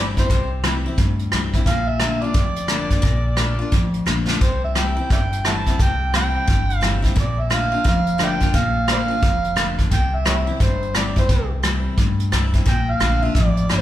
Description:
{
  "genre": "honky-tonk and classic country",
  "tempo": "175 BPM",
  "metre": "4/4",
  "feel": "swing 63% on 8ths",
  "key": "C mixolydian",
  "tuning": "A4 = 439 Hz",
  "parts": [
    { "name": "overdriven harmonica", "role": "second line", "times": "0.0-13.8 s", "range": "Bb4 to A5", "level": "-24 LUFS", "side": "right 2 dB", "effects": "none" },
    { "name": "picked steel-string acoustic guitar", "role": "accompaniment", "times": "0.0-13.8 s", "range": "F2 to F4", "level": "-24 LUFS", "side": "left 3 dB", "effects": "none" },
    { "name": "upright bass", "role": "bass", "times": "0.0-13.8 s", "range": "F1 to D2", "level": "-24 LUFS", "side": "equal", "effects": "none" },
    { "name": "soft brush drum kit", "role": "drums", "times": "0.2-13.8 s", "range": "hi-hat, kick drum, rim click, snare drum", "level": "-20 LUFS", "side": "equal", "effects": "none" }
  ],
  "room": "moderate large studio reverb, RT60 1.4 s",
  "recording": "heard from further back in the room",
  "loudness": "-17 LUFS",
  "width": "side -12 dB against mid",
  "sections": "0.0-13.8 A section",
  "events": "harmonica solo 0.0-13.8; drum fill 4.2",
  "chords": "0.0 C; 1.7 Bb; 4.4 C; 7.2 Bb; 9.9 C; 12.7 Bb"
}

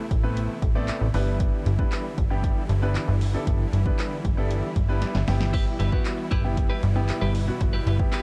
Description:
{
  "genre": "dance-pop",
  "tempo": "116 BPM",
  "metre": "4/4",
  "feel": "straight",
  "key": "unclear",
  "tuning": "A4 = 440 Hz",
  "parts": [
    { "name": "clear baby grand piano", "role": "accompaniment", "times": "0.0-8.2 s", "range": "G3 to B5", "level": "-34 LUFS", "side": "equal", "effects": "sidechain pumping" },
    { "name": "supersaw chords", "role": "sustained chords", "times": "0.0-8.2 s", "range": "B2 to B4", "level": "-35 LUFS", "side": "equal", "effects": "sidechain pumping" },
    { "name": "downlifter", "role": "sound effects", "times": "0.0-1.4 s", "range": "none", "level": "barely audible", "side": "none", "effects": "none" },
    { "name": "plucky analog bass", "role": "bass", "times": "0.1-8.1 s", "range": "G1 to A1", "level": "-26 LUFS", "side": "equal", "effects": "sidechain pumping" },
    { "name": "punchy analog drum machine", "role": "drums", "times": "0.1-8.2 s", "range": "crash cymbal, handclaps, hi-hat, kick drum, snare drum", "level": "-28 LUFS", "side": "equal", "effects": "none" },
    { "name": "clean electric guitar", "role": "riff", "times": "5.5-8.2 s", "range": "E4 to B4", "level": "-36 LUFS", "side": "equal", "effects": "lush chorus" }
  ],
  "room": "little or no reverb",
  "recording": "dark, warm production",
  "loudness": "-24 LUFS",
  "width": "mono",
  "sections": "0.0-8.2 A section",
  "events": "grand piano fill 0.6-1.4; drum fill 5.0-5.5",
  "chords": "0.0 Amadd9; 1.1 G6; 5.3 Em/G"
}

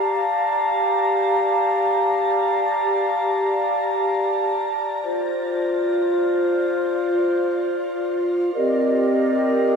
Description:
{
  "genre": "hip hop",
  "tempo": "free time",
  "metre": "none",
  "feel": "none",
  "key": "G minor",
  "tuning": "A4 = 441 Hz",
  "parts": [
    { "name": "mellow hollow large flute ensemble", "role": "solo", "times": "0.0-9.8 s", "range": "C4 to Bb5", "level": "-18 LUFS", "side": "equal", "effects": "none" }
  ],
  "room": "moderate shimmer reverb, RT60 8.0 s",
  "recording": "none",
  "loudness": "-18 LUFS",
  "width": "side -5 dB against mid",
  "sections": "0.0-9.8 A section",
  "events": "none",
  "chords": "0.0 Gm7; 5.0 Dm7; 8.5 Cm7"
}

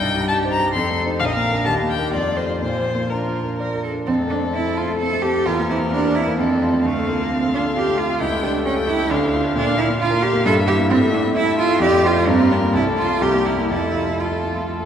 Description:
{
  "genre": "quick classical-period movement for piano trio",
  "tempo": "121-136 BPM",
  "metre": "3/4",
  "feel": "rubato",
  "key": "Bb major, F major from 4.1 s",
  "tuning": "A4 = 436 Hz",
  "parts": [
    { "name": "warm violin", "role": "melody", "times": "0.0-14.9 s", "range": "A4 to C6", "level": "-25 LUFS", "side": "left 3 dB", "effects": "none" },
    { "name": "rich cello", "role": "second line", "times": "0.0-14.7 s", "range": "A3 to Bb4", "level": "-20 LUFS", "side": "right 3 dB", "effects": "none" },
    { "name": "warm concert grand piano", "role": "accompaniment", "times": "0.0-14.9 s", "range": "Bb1 to D5", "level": "-21 LUFS", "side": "left 1 dB", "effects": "none" }
  ],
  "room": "wet church reverb, RT60 3.6 s",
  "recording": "recorded in a church or concert hall",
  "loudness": "-17 LUFS",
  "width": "side -8 dB against mid",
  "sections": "0.0-4.1 A section; 4.1-14.9 B section",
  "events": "none",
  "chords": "0.0 Cm; 0.7 F7; 1.2 Bb; 1.7 Eb; 2.1 F7; 2.6 Bb; 4.1 F; 5.5 C7/E; 6.4 F; 6.9 Dm; 8.2 A7/C#; 9.1 Dm; 9.6 Bb5; 10.5 Edim/G; 10.9 A5; 11.8 Dm/F; 12.3 Gm7; 12.7 F/C; 13.2 C7; 13.7 F"
}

